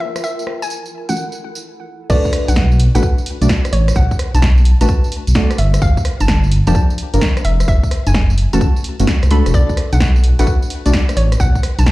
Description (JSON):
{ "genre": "UK garage, two-step garage", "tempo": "129 BPM", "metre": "4/4", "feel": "swing 66% on 16ths", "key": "B minor", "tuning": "A4 = 439 Hz", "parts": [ { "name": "hollow square pluck", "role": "melody", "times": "0.0-11.9 s", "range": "C#5 to B5", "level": "-25 LUFS", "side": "equal", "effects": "chorus, ping-pong delay" }, { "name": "granular cloud pad", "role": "texture", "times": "0.0-1.6 s", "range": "E4 to Bb4", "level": "-31 LUFS", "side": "right 2 dB", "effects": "built-in reverb, sidechain pumping" }, { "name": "punchy analog drum machine", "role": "drums", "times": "0.2-11.9 s", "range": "congas, crash cymbal, hi-hat, rim click, snare drum, tambourine", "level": "-23 LUFS", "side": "equal", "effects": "none" }, { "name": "deep mellow chord stab", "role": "stabs", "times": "1.1-10.9 s", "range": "E3 to D5", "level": "-20 LUFS", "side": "equal", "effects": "wide subtle chorus, ping-pong delay" }, { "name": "dark detuned saw bass", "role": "bass", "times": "2.1-11.9 s", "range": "E1 to C#2", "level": "-13 LUFS", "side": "equal", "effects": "none" }, { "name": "electronic kick drum", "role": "drums", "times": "2.1-11.9 s", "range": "none", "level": "-16 LUFS", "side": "equal", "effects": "overdrive" } ], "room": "digital ambience", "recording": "played on a big sound system in a bare room, large studio reverb", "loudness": "-12 LUFS", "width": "side -18 dB against mid", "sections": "0.0-2.1 A section; 2.1-11.9 B section", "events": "stop 1.6-2.1; drop 2.1-11.9", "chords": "0.2 F#m7; 2.1 Bm7; 5.6 Gm7; 7.7 F#m7; 9.5 Bm7" }